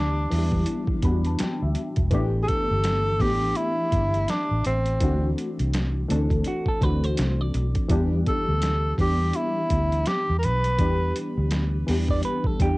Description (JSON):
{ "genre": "R&B, neo-soul", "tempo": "83 BPM", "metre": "4/4", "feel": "swing 59% on 16ths", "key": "E minor", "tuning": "A4 = 441 Hz", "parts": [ { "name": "breathy tenor saxophone", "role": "melody", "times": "0.0-11.2 s", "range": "C4 to B4", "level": "-26 LUFS", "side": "equal", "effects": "none" }, { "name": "reed electric piano", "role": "accompaniment", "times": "0.0-12.8 s", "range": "E3 to B5", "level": "-28 LUFS", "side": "left 1 dB", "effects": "phaser, cassette tape" }, { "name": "vintage muted fingered electric bass", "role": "bass", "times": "0.0-12.8 s", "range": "E1 to E2", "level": "-24 LUFS", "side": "equal", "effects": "none" }, { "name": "boom bap sampler-style drum kit", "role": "drums", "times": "0.3-12.8 s", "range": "hi-hat, kick drum, snare drum", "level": "-27 LUFS", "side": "equal", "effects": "cassette tape" }, { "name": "semi-hollow electric guitar", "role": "second line", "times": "6.5-12.8 s", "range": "F#4 to D5", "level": "-30 LUFS", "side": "right 2 dB", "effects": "cassette tape" } ], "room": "light reverb", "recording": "home recording on cassette", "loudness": "-21 LUFS", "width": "side -21 dB against mid", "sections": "0.0-12.8 A section", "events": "reed electric piano fill 0.7-2.1", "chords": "0.0 Em7; 2.1 A9sus4; 5.0 D9; 7.9 Em7" }